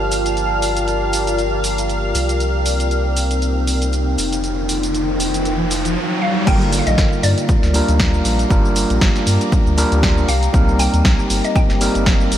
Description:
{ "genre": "deep house", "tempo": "118 BPM", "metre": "4/4", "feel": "swing 56% on 16ths", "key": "G minor", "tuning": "A4 = 438 Hz", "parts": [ { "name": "deep dark ambient pad", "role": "sustained chords", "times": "0.0-12.4 s", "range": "Eb4 to D6", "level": "-24 LUFS", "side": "left 1 dB", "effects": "chorus, built-in reverb, sidechain pumping" }, { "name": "round analog bass", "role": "bass", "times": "0.0-12.4 s", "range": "F1 to G2", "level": "-20 LUFS", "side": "equal", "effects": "sidechain pumping" }, { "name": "analog string pad", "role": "texture", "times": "0.0-6.0 s", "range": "F5 to F6", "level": "-28 LUFS", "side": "left 1 dB", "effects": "ensemble chorus, sidechain pumping" }, { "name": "warbly tape-like pad", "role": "texture", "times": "0.0-6.0 s", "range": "C4 to A5", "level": "-26 LUFS", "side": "right 1 dB", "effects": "chorus, built-in reverb, sidechain pumping" }, { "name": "punchy analog drum machine", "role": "drums", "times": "0.1-12.4 s", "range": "crash cymbal, hi-hat, shaker, snare drum", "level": "-24 LUFS", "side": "equal", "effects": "studio reverb" }, { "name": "riser", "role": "sound effects", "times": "4.3-6.5 s", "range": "none", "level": "-24 LUFS", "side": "right 1 dB", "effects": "none" }, { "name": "mallet-like synth pluck", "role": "melody", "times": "6.2-12.3 s", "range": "D5 to G5", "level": "-25 LUFS", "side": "left 1 dB", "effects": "lush chorus, tape echo" }, { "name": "overdriven tine electric piano", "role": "stabs", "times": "6.5-12.3 s", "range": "D3 to Bb4", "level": "-20 LUFS", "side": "right 1 dB", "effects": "vintage 12-bit sampler grit, sidechain pumping, diffuse ambient delay" }, { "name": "electronic kick drum", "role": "drums", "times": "6.5-12.2 s", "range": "none", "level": "-16 LUFS", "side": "equal", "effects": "studio reverb" } ], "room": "moderate huge ambient reverb, RT60 4.1 s", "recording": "dreamy mix soaked in reverb, vinyl crackle", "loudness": "-14 LUFS", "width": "side -11 dB against mid", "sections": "0.0-6.5 A section; 6.5-12.4 B section", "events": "riser 4.3-6.5; drop 6.5-12.4", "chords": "0.0 Gm7; 2.1 Cm7; 4.2 F9sus4; 6.5 Gm7; 10.3 Cm7", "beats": "| 0.37 0.88 1.39 1.90 | 2.40 2.91 3.42 3.93 | 4.44 4.95 5.45 5.96 | 6.47 6.98 7.49 8.00 | 8.51 9.01 9.52 10.03 | 10.54 11.05 11.56 12.06" }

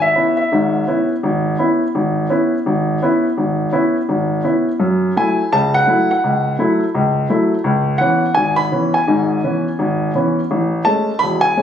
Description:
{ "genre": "solo jazz", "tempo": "168 BPM", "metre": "4/4", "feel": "swing 64% on 8ths", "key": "C# minor", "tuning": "A4 = 440 Hz", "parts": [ { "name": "warm baby grand piano", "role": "solo", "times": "0.0-11.6 s", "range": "E1 to B5", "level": "-14 LUFS", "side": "equal", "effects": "none" } ], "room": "light reverb", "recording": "recorded on a phone in the room, studio reverb", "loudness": "-14 LUFS", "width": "side -9 dB against mid", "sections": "0.0-11.6 A section", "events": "none", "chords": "0.0 C#m7; 4.8 F#m7; 7.6 C#m7; 10.5 Amaj7", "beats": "0.16 | 0.51 0.87 1.23 1.58 | 1.94 2.30 2.65 3.01 | 3.37 3.73 4.08 4.44 | 4.79 5.15 5.51 5.86 | 6.22 6.58 6.93 7.29 | 7.64 8.00 8.36 8.71 | 9.07 9.43 9.78 10.14 | 10.50 10.85 11.21 11.57" }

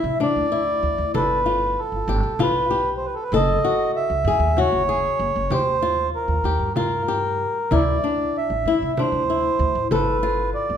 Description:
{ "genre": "contemporary instrumental, chamber music in an uneven meter", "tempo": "192 BPM (eighths)", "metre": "7/8", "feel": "straight", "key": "D dorian", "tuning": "A4 = 439 Hz", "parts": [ { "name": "mellow accordion", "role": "melody", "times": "0.0-10.8 s", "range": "A4 to E5", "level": "-22 LUFS", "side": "right 2 dB", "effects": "none" }, { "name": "flamenco guitar", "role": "arpeggios", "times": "0.0-10.7 s", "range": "D4 to A4", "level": "-24 LUFS", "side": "left 6 dB", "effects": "none" }, { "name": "upright bass", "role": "bass", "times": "0.0-10.8 s", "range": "F#1 to D3", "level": "-26 LUFS", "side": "right 1 dB", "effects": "none" }, { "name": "frame drum", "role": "percussion", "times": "0.2-10.2 s", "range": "none", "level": "-30 LUFS", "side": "right 2 dB", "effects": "none" } ], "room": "wet recital hall reverb, RT60 1.6 s", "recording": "minimal, uncompressed stereo recording", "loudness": "-19 LUFS", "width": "side -8 dB against mid", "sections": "0.0-10.8 A section", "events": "none", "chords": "0.0 Dsus2; 1.1 Gadd9; 3.3 F#7(no3); 5.5 Eb; 7.7 Dsus2; 9.9 Gadd9", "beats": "0.21 0.52 0.83 | 1.15 1.46 1.78 2.09 2.40 2.71 3.02 | 3.33 3.64 3.95 4.26 4.57 4.88 5.19 | 5.51 5.82 6.13 6.44 6.76 7.08 7.40 | 7.72 8.03 8.35 8.66 8.98 9.29 9.60 | 9.91 10.22 10.54" }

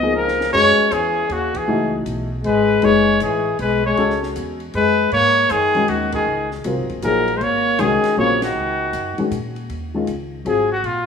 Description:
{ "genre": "modal jazz", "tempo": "157 BPM", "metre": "3/4", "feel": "swing 65% on 8ths", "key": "unclear", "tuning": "A4 = 444 Hz", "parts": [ { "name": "warm trumpet", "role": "melody", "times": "0.0-11.1 s", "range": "F4 to Eb5", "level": "-18 LUFS", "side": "equal", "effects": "none" }, { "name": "breathy trombone", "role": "second line", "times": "0.0-9.3 s", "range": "C#3 to Cb4", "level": "-22 LUFS", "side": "left 3 dB", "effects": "none" }, { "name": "dark upright piano", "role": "accompaniment", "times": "0.0-10.7 s", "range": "C#3 to B4", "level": "-22 LUFS", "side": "left 5 dB", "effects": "none" }, { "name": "upright bass", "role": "bass", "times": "0.0-11.1 s", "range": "F#1 to A#2", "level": "-28 LUFS", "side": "equal", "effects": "none" }, { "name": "compact cocktail drum kit", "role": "drums", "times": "0.3-11.0 s", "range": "crash cymbal, hi-hat, kick drum, ride cymbal, snare drum", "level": "-37 LUFS", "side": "left 1 dB", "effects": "none" } ], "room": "light reverb, small room ambience", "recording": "rough home demo mix", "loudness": "-16 LUFS", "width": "side -6 dB against mid", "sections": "0.5-9.7 A section; 9.7-11.1 B section", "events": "drum fill 0.2-0.5; band accent 1.5, 6.1, 8.4; trumpet solo 9.7-11.1", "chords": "0.0 Db13; 0.5 F#9sus4; 5.1 G#9sus4; 9.7 Eb9sus4", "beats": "0.15 | 0.54 0.92 1.30 | 1.68 2.07 2.45 | 2.83 3.21 3.59 | 3.98 4.36 4.74 | 5.12 5.50 5.88 | 6.27 6.65 7.03 | 7.41 7.79 8.17 | 8.55 8.94 9.32 | 9.70 10.08 10.46 | 10.84" }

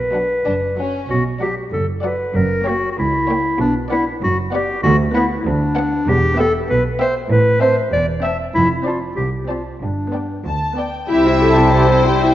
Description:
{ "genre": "cinematic, playful, whimsical film cue", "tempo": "96 BPM", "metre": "2/4", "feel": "straight", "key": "B minor, C major from 6.1 s", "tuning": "A4 = 439 Hz", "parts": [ { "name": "clear clarinet", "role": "second line", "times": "0.0-12.3 s", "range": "D4 to E5", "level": "-19 LUFS", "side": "left 1 dB", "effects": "none" }, { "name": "rich studio cello section", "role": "bass", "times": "0.0-12.3 s", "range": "C2 to C3", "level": "-22 LUFS", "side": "right 2 dB", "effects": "none" }, { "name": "rich studio double bass section", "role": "bass", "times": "0.0-12.3 s", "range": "E1 to D2", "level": "-23 LUFS", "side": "right 2 dB", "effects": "none" }, { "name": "rich studio violin section", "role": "melody", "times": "0.1-12.3 s", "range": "E5 to A5", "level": "-27 LUFS", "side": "left 2 dB", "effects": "none" }, { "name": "clear studio violin section", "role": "second line", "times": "0.1-12.3 s", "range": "C#4 to F#5", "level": "-25 LUFS", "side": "left 3 dB", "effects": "none" }, { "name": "warm studio viola section", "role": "accompaniment", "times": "0.1-12.3 s", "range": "F#3 to G4", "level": "-23 LUFS", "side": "right 1 dB", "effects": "none" }, { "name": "marimba with soft mallets", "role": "melody", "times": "11.1-12.3 s", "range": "E4 to A4", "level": "-18 LUFS", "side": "left 3 dB", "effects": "none" }, { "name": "mellow hollow large flute ensemble", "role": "second line", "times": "11.1-12.3 s", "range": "G5", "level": "-23 LUFS", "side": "left 4 dB", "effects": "none" }, { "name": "warm oboe", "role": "second line", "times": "11.1-12.3 s", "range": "E5", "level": "-25 LUFS", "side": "equal", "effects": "none" }, { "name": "clear French horn section", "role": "sustained chords", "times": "11.1-12.3 s", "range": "G3 to C4", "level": "-24 LUFS", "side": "left 3 dB", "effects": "none" } ], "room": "wet scoring stage reverb, RT60 1.8 s", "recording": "worn, warbling old tape, cassette tape, warbly pitch drift, nothing above 7.6 kHz", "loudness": "-15 LUFS", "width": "side -13 dB against mid", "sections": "0.0-1.1 A section; 1.1-11.1 B section; 11.1-12.3 C section", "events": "none", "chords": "0.0 Bm; 2.4 F#7b9; 3.6 Bm; 4.8 Bm/D; 6.1 Em; 7.3 Am; 8.5 F6; 9.8 G; 11.1 C", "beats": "0.46 | 1.10 1.73 | 2.35 2.98 | 3.60 4.22 | 4.84 5.46 | 6.07 6.69 | 7.30 7.92 | 8.54 9.17 | 9.81 10.45 | 11.10 11.73" }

